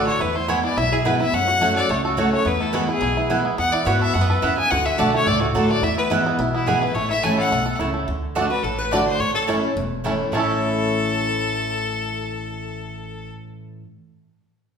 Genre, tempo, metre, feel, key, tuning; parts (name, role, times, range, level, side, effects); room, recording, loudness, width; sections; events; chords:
bluegrass; 214 BPM; 4/4; straight; A major; A4 = 439 Hz
clear fiddle; melody; 0.0-13.3 s; E4 to G#5; -23 LUFS; left 3 dB
picked steel-string acoustic guitar; accompaniment; 0.0-13.8 s; E2 to F#4; -24 LUFS; equal
bluegrass banjo; arpeggios; 0.0-13.4 s; E3 to A4; -26 LUFS; right 3 dB
mandolin; stabs; 0.0-13.8 s; A3 to A5; -27 LUFS; right 3 dB
upright bass; bass; 0.0-13.3 s; E1 to G#2; -28 LUFS; left 1 dB
lap resonator guitar; second line; 8.5-13.3 s; A4 to D5; -29 LUFS; equal
wet large studio reverb, RT60 1.3 s; band playing live in one room; -18 LUFS; side -6 dB against mid
0.0-8.1 A section; 8.1-10.3 B section; 10.3-12.6 C section
0.2 E; 1.3 F#m; 2.5 E; 3.6 Esus2; 4.7 D; 5.8 E; 7.0 A; 8.1 D; 9.2 A